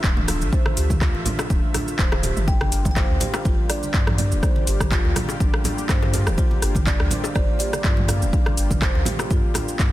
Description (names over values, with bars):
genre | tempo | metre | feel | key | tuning
afro house | 123 BPM | 4/4 | swing 54% on 16ths | unclear | A4 = 440 Hz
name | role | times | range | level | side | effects
warm analog pad | sustained chords | 0.0-9.9 s | D3 to E5 | -32 LUFS | left 1 dB | chorus, tremolo, vintage 12-bit sampler grit, sidechain pumping
marimba with medium mallets | arpeggios | 0.0-9.9 s | D4 to C5 | -31 LUFS | right 1 dB | sidechain pumping, tape echo
warm sub bass | bass | 0.0-9.9 s | D1 to G2 | -24 LUFS | equal | sidechain pumping
deep house drum kit | drums | 0.0-9.9 s | cabasa, handclaps, hi-hat, rim click, toms | -26 LUFS | equal | overdrive, studio reverb
electronic kick drum | drums | 0.0-9.9 s | none | -21 LUFS | equal | overdrive, studio reverb
bongos | percussion | 0.0-9.7 s | none | -34 LUFS | left 6 dB | none
congas | percussion | 0.2-9.8 s | none | -30 LUFS | right 2 dB | none
buzzing kalimba | melody | 2.5-9.9 s | C5 to G5 | -33 LUFS | right 1 dB | tape echo
room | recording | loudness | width
small room ambience | dense, heavily limited modern master | -18 LUFS | side -15 dB against mid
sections
0.0-9.9 A section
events
none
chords
0.0 Dmadd9; 2.5 Gm7